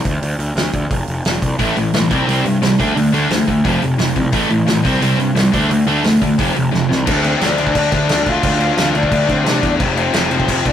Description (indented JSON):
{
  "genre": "punk rock",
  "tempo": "175 BPM",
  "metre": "4/4",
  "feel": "straight",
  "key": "unclear",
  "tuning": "A4 = 441 Hz",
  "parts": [
    { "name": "fuzz picked electric bass", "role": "bass", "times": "0.1-10.7 s", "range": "F1 to C3", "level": "-20 LUFS", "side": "equal", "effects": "overdrive" },
    { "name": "loose indie drum kit", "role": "drums", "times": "0.1-10.7 s", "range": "crash cymbal, hi-hat, kick drum, snare drum", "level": "-20 LUFS", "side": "equal", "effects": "none" },
    { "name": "overdriven semi-hollow guitar", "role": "riff", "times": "1.6-7.1 s", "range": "F2 to D4", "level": "-18 LUFS", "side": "right 4 dB", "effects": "none" },
    { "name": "tight distorted guitar", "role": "riff", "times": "1.6-10.7 s", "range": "F2 to D4", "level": "-18 LUFS", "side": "left 4 dB", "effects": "distortion" },
    { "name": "lead guitar through a small cranked amp", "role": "melody", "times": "7.3-10.7 s", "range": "C4 to F5", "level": "-19 LUFS", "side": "left 2 dB", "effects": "overdrive" }
  ],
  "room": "moderate stone room reverb, RT60 1.3 s",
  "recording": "rough rehearsal-room recording, warm saturation",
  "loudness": "-13 LUFS",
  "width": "side -10 dB against mid",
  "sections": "0.0-7.1 A section; 7.1-10.7 B section",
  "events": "drum fill 6.7-7.1",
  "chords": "0.1 N.C.; 0.9 F5; 1.6 A5; 2.1 C5; 2.8 D5; 3.6 F5; 4.3 A5; 4.8 C5; 5.5 D5; 6.4 F5; 7.1 Dm; 9.8 F5"
}